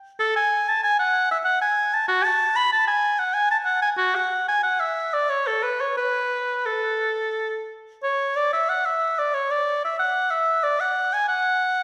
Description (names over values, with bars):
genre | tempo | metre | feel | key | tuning
classical, baroque-style fantasia for unaccompanied oboe | 86-96 BPM | 3/4 | rubato | A major | A4 = 440 Hz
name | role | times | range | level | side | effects
clear oboe | solo | 0.2-11.8 s | F#4 to B5 | -22 LUFS | equal | none
room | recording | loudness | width
wet recital hall reverb, RT60 1.6 s | heard from further back in the room | -22 LUFS | mono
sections
0.0-8.0 A section; 8.0-11.8 B section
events
none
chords
none